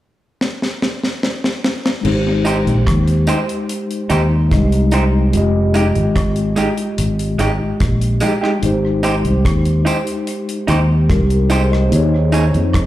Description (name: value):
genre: lovers rock reggae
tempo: 73 BPM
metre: 4/4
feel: straight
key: Ab major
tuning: A4 = 440 Hz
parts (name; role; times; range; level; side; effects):
- deep reggae drum kit; drums; 0.4-12.9 s; crash cymbal, hi-hat, kick drum, rim click, snare drum; -20 LUFS; equal; tape echo
- mellow tine electric piano; accompaniment; 2.0-12.9 s; Ab3 to Eb5; -20 LUFS; left 2 dB; medium stereo tremolo
- fingered electric bass; bass; 2.0-12.9 s; F1 to F2; -15 LUFS; equal; none
- electric guitar through a small old amp; stabs; 2.4-12.4 s; Ab3 to Db5; -21 LUFS; right 2 dB; slapback echo
- tambourine and woodblock; percussion; 2.4-12.9 s; none; -33 LUFS; right 2 dB; none
room: light reverb, studio ambience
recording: live gig heard through the venue's PA, club reverb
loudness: -14 LUFS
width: side -14 dB against mid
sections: 0.0-2.0 A section; 2.0-12.9 B section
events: drum fill 0.4-2.0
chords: 0.0 N.C.; 2.0 Abmaj7; 5.3 Fm9; 8.6 Abmaj7; 11.9 Eb7sus4